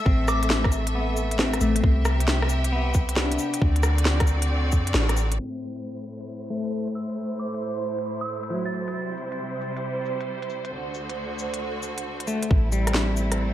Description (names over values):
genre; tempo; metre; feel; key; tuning
future garage; 135 BPM; 4/4; swing 67% on 16ths; A dorian; A4 = 438 Hz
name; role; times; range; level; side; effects
soft synth bell; melody; 0.0-0.5, 7.0-9.0 s; D6 to A6; -35 LUFS; left 1 dB; chorus, tape echo
bright studio string section; sustained chords; 0.0-13.5 s; D2 to E5; -30 LUFS; right 1 dB; sidechain pumping
semi-hollow electric guitar; accompaniment; 0.1-9.1, 12.3-13.5 s; F#3 to D4; -30 LUFS; left 2 dB; sidechain pumping, low-pass filter, tape echo
soft 808-style bass; bass; 0.1-5.4, 12.5-13.5 s; A1 to F#2; -24 LUFS; equal; sidechain pumping
electronic kick drum; drums; 0.1-4.8, 12.5-12.6 s; none; -21 LUFS; equal; none
organic electronic drum kit; drums; 0.3-13.4 s; cabasa, hi-hat, rim click, snare drum; -27 LUFS; equal; none
drifting glass-harmonics texture; texture; 6.4-12.5 s; C5; -37 LUFS; right 5 dB; chorus, built-in reverb
room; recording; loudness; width
moderate scoring stage reverb, RT60 1.6 s; vinyl crackle, low-pass filter; -22 LUFS; side -12 dB against mid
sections
0.0-5.4 A section; 5.4-12.5 B section; 12.5-13.5 C section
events
band accent 4.9; filter sweep on clean electric guitar 5.4-12.5; filter sweep 5.4-12.5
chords
0.0 Am; 1.8 C; 3.6 D7; 5.4 Am; 8.9 C; 10.7 D7; 12.5 Am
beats
| 0.06 0.51 0.95 1.39 | 1.84 2.28 2.73 3.17 | 3.62 4.06 4.50 4.95 | 5.39 5.84 6.28 6.73 | 7.17 7.62 8.06 8.51 | 8.95 9.39 9.84 10.28 | 10.73 11.17 11.62 12.06 | 12.51 12.95 13.39